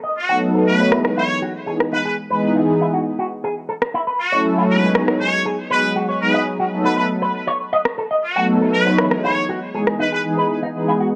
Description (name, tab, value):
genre	nu-disco, nu disco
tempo	119 BPM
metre	4/4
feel	straight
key	unclear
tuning	A4 = 440 Hz
part	electric guitar with an envelope filter	riff	0.0-11.1 s	D#4 to F#5	-24 LUFS	equal	lush chorus, low-pass filter
part	muted trumpet section	melody	0.2-10.2 s	F#4 to C#5	-25 LUFS	equal	tape echo
part	warm analog pad	accompaniment	0.3-10.9 s	E3 to C#5	-21 LUFS	equal	chorus
part	electronic rim click	drums	0.9-10.0 s	none	-23 LUFS	equal	low-pass filter on snare
room	moderate plate reverb, RT60 1.4 s, digital ambience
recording	none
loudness	-19 LUFS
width	mono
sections	0.0-11.2 A section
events	filter sweep on clean electric guitar 0.0-11.2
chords	0.0 B7; 0.9 Emaj7; 2.9 F#m7; 4.7 G#m7; 6.7 B7; 9.0 Emaj7